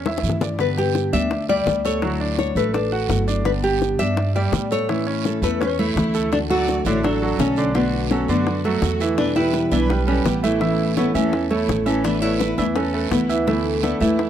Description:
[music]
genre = latin, Cuban son and guajira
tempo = 168 BPM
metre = 4/4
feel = straight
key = D major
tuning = A4 = 440 Hz
[part]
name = nylon-string guitar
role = melody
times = 0.0-14.3 s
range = A3 to E5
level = -22 LUFS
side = left 1 dB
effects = none
[part]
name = clear concert grand piano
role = arpeggios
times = 0.0-14.3 s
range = D3 to G5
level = -25 LUFS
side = right 5 dB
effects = none
[part]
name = upright bass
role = bass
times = 0.0-14.3 s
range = G1 to A2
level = -25 LUFS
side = right 1 dB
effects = none
[part]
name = bongos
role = percussion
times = 0.1-14.3 s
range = none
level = -27 LUFS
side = left 6 dB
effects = none
[part]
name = fingerpicked steel-string acoustic guitar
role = accompaniment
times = 0.2-14.2 s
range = B2 to G4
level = -25 LUFS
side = left 4 dB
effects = none
[part]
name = guiro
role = percussion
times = 0.2-14.3 s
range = none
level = -35 LUFS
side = right 19 dB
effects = none
[part]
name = rich chamber violin section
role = second line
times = 5.8-14.3 s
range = E4 to D5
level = -32 LUFS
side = right 3 dB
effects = none
[sound]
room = studio ambience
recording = dry, close 1970s-style studio recording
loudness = -18 LUFS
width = side -10 dB against mid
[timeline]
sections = 0.0-6.3 A section; 6.3-14.3 B section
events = drum fill 0.1-0.6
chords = 0.0 A; 0.6 G; 2.0 Dadd9; 3.5 G; 4.9 A; 6.3 D; 7.8 Bm7; 9.2 Em; 10.6 A; 12.0 Asus2; 13.5 Dsus2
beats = 0.24 | 0.60 0.95 1.31 1.67 | 2.03 2.39 2.75 3.10 | 3.46 3.82 4.18 4.53 | 4.89 5.25 5.61 5.96 | 6.32 6.68 7.04 7.40 | 7.75 8.11 8.47 8.83 | 9.19 9.54 9.90 10.26 | 10.62 10.97 11.33 11.69 | 12.05 12.40 12.76 13.12 | 13.48 13.83 14.19

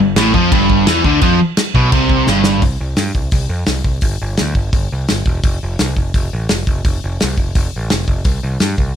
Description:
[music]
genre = punk rock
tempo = 170 BPM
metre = 4/4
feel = straight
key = G mixolydian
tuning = A4 = 441 Hz
[part]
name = biting overdriven guitar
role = riff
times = 0.0-2.6 s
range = G2 to F3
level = -14 LUFS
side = equal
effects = none
[part]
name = sludgy distorted guitar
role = riff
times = 0.0-2.6 s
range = G2 to F3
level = -16 LUFS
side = equal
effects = overdrive
[part]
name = growling picked electric bass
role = bass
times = 0.0-8.9 s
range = E1 to G2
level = -19 LUFS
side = equal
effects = overdrive
[part]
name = loose indie drum kit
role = drums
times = 0.2-8.9 s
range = crash cymbal, hi-hat, kick drum, snare drum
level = -16 LUFS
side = equal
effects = none
[sound]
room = light reverb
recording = none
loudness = -13 LUFS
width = side -9 dB against mid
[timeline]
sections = 0.0-2.6 A section; 2.6-9.0 B section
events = drum fill 2.3-2.6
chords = 0.0 G; 2.6 C5; 4.0 G5; 5.4 N.C.; 8.3 C5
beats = 0.17 0.53 0.88 | 1.23 1.58 1.93 2.28 | 2.63 2.98 3.33 3.69 | 4.04 4.39 4.74 5.09 | 5.44 5.80 6.15 6.50 | 6.85 7.21 7.56 7.91 | 8.26 8.62

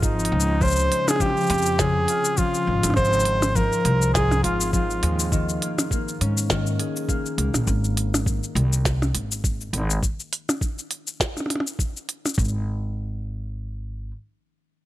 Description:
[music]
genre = folktronica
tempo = 102 BPM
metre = 4/4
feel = swing 56% on 16ths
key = Ab major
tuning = A4 = 440 Hz
[part]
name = clear flugelhorn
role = melody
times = 0.0-5.3 s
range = Eb4 to C5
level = -23 LUFS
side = right 1 dB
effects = digital delay
[part]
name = concert harp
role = arpeggios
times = 0.0-13.1 s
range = Ab2 to Ab4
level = -27 LUFS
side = left 3 dB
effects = digital delay
[part]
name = upright bass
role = bass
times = 0.0-14.1 s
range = Ab1 to Ab2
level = -24 LUFS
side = equal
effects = none
[part]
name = electronic kick drum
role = drums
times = 0.0-12.5 s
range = none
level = -25 LUFS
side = equal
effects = none
[part]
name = minimal click drum kit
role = drums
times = 0.0-12.5 s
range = cabasa, hi-hat, percussion blips, snare drum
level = -26 LUFS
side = equal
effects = none
[sound]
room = light reverb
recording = none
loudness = -20 LUFS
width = side -15 dB against mid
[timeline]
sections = 0.0-12.4 A section; 12.4-14.7 B section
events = none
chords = 0.0 Dbmaj7; 3.0 Ab6; 5.3 Eb7sus4; 7.7 Ab; 10.0 N.C.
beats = 0.03 | 0.62 1.21 1.79 2.38 | 2.97 3.56 4.15 4.74 | 5.32 5.91 6.50 7.09 | 7.68 8.26 8.85 9.44 | 10.03 10.62 11.21 11.79 | 12.38 12.97 13.56

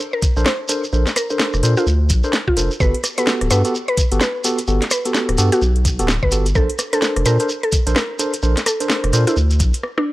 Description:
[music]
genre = UK garage, two-step garage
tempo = 128 BPM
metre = 4/4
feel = swing 61% on 16ths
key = unclear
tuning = A4 = 440 Hz
[part]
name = shekere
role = percussion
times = 0.0-9.8 s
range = none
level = -25 LUFS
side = right 1 dB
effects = none
[part]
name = mallet-like synth pluck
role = melody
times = 0.1-10.1 s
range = D4 to C5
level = -23 LUFS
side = equal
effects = chorus, tape echo
[part]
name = electronic kick drum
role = drums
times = 0.2-9.7 s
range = none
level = -18 LUFS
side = equal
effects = none
[part]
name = garage drum kit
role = drums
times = 0.2-10.1 s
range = hi-hat, rim click, snare drum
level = -21 LUFS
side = equal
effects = none
[part]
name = bright tine electric piano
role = stabs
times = 0.4-9.4 s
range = B3 to C5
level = -22 LUFS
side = equal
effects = medium stereo tremolo, analog delay
[part]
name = saturated sub bass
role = bass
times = 0.4-9.7 s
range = D1 to Bb2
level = -17 LUFS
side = equal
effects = sidechain pumping
[sound]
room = little or no reverb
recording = dry, gritty hardware recording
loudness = -15 LUFS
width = side -17 dB against mid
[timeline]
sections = 0.0-10.1 A section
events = break 9.8; drum fill 9.8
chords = 0.0 Bbmaj9; 2.8 Gmaj9; 6.6 Bbmaj9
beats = 0.46 | 0.93 1.40 1.87 2.33 | 2.80 3.27 3.74 4.21 | 4.68 5.15 5.62 6.08 | 6.55 7.02 7.49 7.96 | 8.43 8.90 9.37 9.83

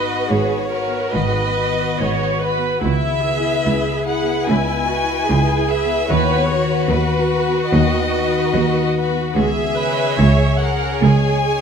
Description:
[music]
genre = classical, slow romantic movement for symphony orchestra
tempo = 73 BPM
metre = 4/4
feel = rubato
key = unclear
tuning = A4 = 439 Hz
[part]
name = rich chamber violin section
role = melody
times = 0.0-11.6 s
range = B4 to G#5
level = -23 LUFS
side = left 2 dB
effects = none
[part]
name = rich chamber violin section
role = second line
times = 0.0-11.6 s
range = E4 to C#5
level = -24 LUFS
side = left 4 dB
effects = none
[part]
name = rich chamber viola section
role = accompaniment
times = 0.0-11.6 s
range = E4 to C#5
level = -22 LUFS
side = right 4 dB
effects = none
[part]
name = concert harp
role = arpeggios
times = 0.0-11.6 s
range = G#2 to C#5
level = -24 LUFS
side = left 10 dB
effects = none
[part]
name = clear chamber cello section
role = bass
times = 0.0-11.6 s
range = C#2 to G#2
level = -21 LUFS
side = right 2 dB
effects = none
[part]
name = rich chamber double bass section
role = bass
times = 0.0-11.6 s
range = G#1 to D#2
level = -23 LUFS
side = right 4 dB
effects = none
[sound]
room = light reverb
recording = close, detailed microphones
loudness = -15 LUFS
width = side -7 dB against mid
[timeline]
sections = 0.0-11.6 A section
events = none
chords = 0.0 G#m7; 2.8 C#m7; 6.1 B/D#; 9.4 C#m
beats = 0.30 1.14 2.00 | 2.83 3.66 4.48 5.30 | 6.10 6.91 7.73 8.55 | 9.37 10.19 11.04

